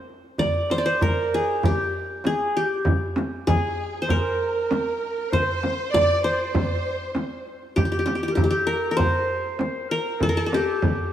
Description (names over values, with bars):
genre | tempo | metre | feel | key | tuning
Turkish makam ensemble | 98 BPM | 4/4 | straight | unclear | A4 = 439 Hz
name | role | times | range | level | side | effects
qanun | melody | 0.0-11.1 s | G4 to D5 | -23 LUFS | equal | none
darbuka | percussion | 0.1-11.0 s | none | -27 LUFS | right 1 dB | none
frame drum | percussion | 0.4-11.0 s | none | -27 LUFS | equal | none
rich studio violin section | second line | 3.5-7.4 s | Ab4 to D5 | -31 LUFS | right 3 dB | none
warm clarinet | second line | 3.5-11.1 s | G4 to D5 | -31 LUFS | left 1 dB | none
room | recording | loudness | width
wet plate reverb, RT60 2.5 s | heard from further back in the room, small room ambience | -21 LUFS | side -10 dB against mid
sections
0.0-7.8 A section; 7.8-11.1 B section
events
none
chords
none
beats
| 0.40 1.02 1.63 2.25 | 2.86 3.48 4.09 4.70 | 5.32 5.93 6.54 7.16 | 7.77 8.38 8.99 9.61 | 10.22 10.83